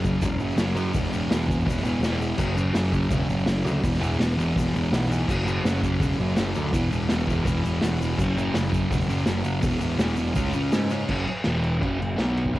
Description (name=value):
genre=garage rock duo or trio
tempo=166 BPM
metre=4/4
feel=straight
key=unclear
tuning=A4 = 439 Hz
part: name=fuzz guitar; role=riff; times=0.0-12.6 s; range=E2 to C#4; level=-25 LUFS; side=equal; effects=distortion, cassette tape
part: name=growling picked electric bass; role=bass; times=0.0-12.6 s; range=E1 to G#2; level=-28 LUFS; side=equal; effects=overdrive
part: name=vintage drum kit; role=drums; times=0.0-12.6 s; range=crash cymbal, hi-hat, kick drum, snare drum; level=-27 LUFS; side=equal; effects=none
part: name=egg shaker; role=percussion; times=0.0-11.0 s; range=none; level=-47 LUFS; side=left 6 dB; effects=none
room=little or no reverb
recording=home recording on cassette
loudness=-22 LUFS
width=side -16 dB against mid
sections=0.0-11.1 A section; 11.1-12.6 B section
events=none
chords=0.0 F#5; 0.9 E5; 2.4 F#5; 3.8 E5; 5.3 F#5; 6.7 E5; 8.2 F#5; 9.6 E5; 10.4 C#5; 11.1 F#5; 11.4 E5; 11.8 F#5; 12.2 B5